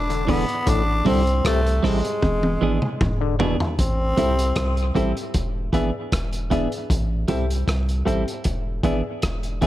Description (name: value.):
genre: dub reggae.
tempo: 77 BPM.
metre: 4/4.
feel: straight.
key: A minor.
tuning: A4 = 440 Hz.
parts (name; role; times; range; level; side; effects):
raspy tenor saxophone; melody; 0.0-4.9 s; G#3 to D4; -25 LUFS; left 1 dB; tape echo.
soft dub sub bass; bass; 0.0-9.7 s; E1 to C2; -24 LUFS; equal; none.
auto-wah clav; arpeggios; 0.1-3.6 s; A2 to D3; -29 LUFS; left 8 dB; overdrive, tape echo.
crunchy breakbeat drum kit; drums; 0.1-9.7 s; hi-hat, kick drum, rim click, toms; -25 LUFS; equal; none.
clean electric guitar; accompaniment; 0.3-9.7 s; E3 to A4; -27 LUFS; right 4 dB; tape echo.
warm upright piano; stabs; 4.2-9.7 s; G4 to E5; -29 LUFS; left 4 dB; tape echo.
room: light reverb, small room ambience.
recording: none.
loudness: -19 LUFS.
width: side -14 dB against mid.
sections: 0.0-3.8 A section; 3.8-9.7 B section.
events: break 0.0-3.8, 3.8-9.7; drum fill 2.2-3.8.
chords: 0.0 E7; 0.7 Am7; 2.2 E7; 3.8 Am7; 5.3 E7; 6.9 Am7; 8.5 E7.